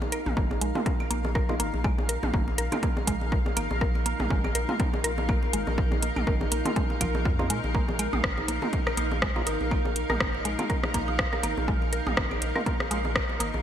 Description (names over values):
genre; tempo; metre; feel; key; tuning
minimal techno; 122 BPM; 4/4; swing 56% on 16ths; unclear; A4 = 441 Hz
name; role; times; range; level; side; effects
electronic bongos, claves, toms and woodblock; percussion; 0.0-13.6 s; none; -34 LUFS; right 1 dB; overdrive, gated reverb, digital delay
granular cloud pad; texture; 0.0-13.6 s; Eb4 to F5; -32 LUFS; equal; built-in reverb, wide subtle chorus, sidechain pumping
mallet-like synth pluck; riff; 0.1-13.5 s; F3 to Bb4; -34 LUFS; equal; chorus, sidechain pumping, digital delay
garage drum kit; drums; 0.1-13.5 s; hi-hat, rim click; -30 LUFS; equal; gated reverb
saturated sub bass; bass; 0.3-13.6 s; Ab1 to Bb2; -32 LUFS; equal; sidechain pumping
electronic kick drum; drums; 0.4-13.3 s; none; -28 LUFS; equal; none
percussive organ stab; stabs; 0.8-12.6 s; Bb3 to F4; -38 LUFS; right 2 dB; none
room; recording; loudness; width
light reverb; bright 1980s-style digital production; -24 LUFS; side -10 dB against mid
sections
0.0-13.6 A section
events
none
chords
0.0 Bbsus4